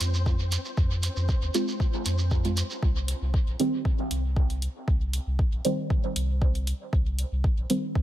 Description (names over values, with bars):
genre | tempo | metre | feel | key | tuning
dub techno | 117 BPM | 4/4 | straight | C minor | A4 = 440 Hz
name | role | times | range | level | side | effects
warm sub bass | bass | 0.0-7.7 s | Bb1 to F2 | -27 LUFS | equal | sidechain pumping
electronic hi-hat | drums | 0.0-7.8 s | none | -35 LUFS | equal | dub echo
shekere | percussion | 0.0-2.8 s | none | -36 LUFS | right 3 dB | dub echo
flickering grainy texture | texture | 0.0-2.8 s | C4 to C5 | -40 LUFS | equal | built-in reverb, sidechain pumping
electronic kick drum | drums | 0.3-8.0 s | none | -24 LUFS | equal | none
deep mellow chord stab | stabs | 1.5-8.0 s | Eb3 to F4 | -30 LUFS | right 1 dB | chorus, phaser, sidechain pumping, dub echo
room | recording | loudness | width
little or no reverb | echo-heavy mix | -24 LUFS | side -13 dB against mid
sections
0.0-2.8 A section; 2.8-8.0 A section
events
filter sweep on synth stab 0.0-2.8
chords
0.0 Fm; 2.8 Cm